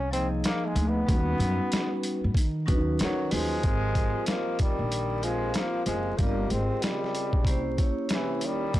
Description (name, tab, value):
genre	hip hop, jazz-hop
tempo	94 BPM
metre	4/4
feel	swing 62% on 16ths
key	Ab major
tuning	A4 = 440 Hz
part	bright trombone	melody	0.0-8.8 s	E3 to Db4	-32 LUFS	equal	none
part	upright bass	bass	0.0-8.8 s	F1 to Eb3	-29 LUFS	equal	tube saturation
part	vibraphone with medium hard mallets	accompaniment	0.1-8.8 s	F3 to F5	-32 LUFS	equal	none
part	boom bap sampler-style drum kit	drums	0.1-8.8 s	hi-hat, kick drum, snare drum	-27 LUFS	equal	overdrive
part	warm tenor saxophone	second line	3.0-8.8 s	C3 to Ab3	-35 LUFS	left 5 dB	none
room	little or no reverb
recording	blown-out, overdriven recording, vinyl crackle, overdrive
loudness	-24 LUFS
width	side -15 dB against mid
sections	0.0-3.6 A section; 3.6-8.8 B section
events	trombone solo 0.0-3.6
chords	0.0 Bbsus2; 1.1 Eb7alt; 3.6 Ab69; 6.2 Gm7b5; 7.5 C7b9